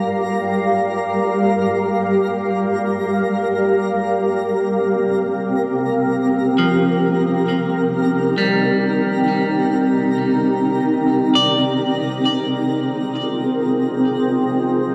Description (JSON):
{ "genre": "ambient", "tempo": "free time", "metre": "none", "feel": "none", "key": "unclear", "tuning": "A4 = 440 Hz", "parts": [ { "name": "granular cloud pad", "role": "sustained chords", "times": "0.0-14.9 s", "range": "G3 to F5", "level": "-19 LUFS", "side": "equal", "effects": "built-in reverb, shimmer reverb" }, { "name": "twinkling granular texture", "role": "texture", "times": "0.0-14.9 s", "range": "Bb4 to Bb5", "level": "-33 LUFS", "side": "equal", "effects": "built-in reverb, shimmer reverb" }, { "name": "electric guitar at the edge of break-up", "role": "arpeggios", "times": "6.6-14.6 s", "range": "F3 to D5", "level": "-24 LUFS", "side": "equal", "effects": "tape echo, shimmer reverb" } ], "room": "wet huge ambient reverb, RT60 7.7 s", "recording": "dark, warm production", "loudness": "-18 LUFS", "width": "mono", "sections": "0.0-14.9 A section", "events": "fade-out on synth texture 0.0-14.9", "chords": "0.0 Gm7; 4.2 Cm7; 11.4 Ab69", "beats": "free time" }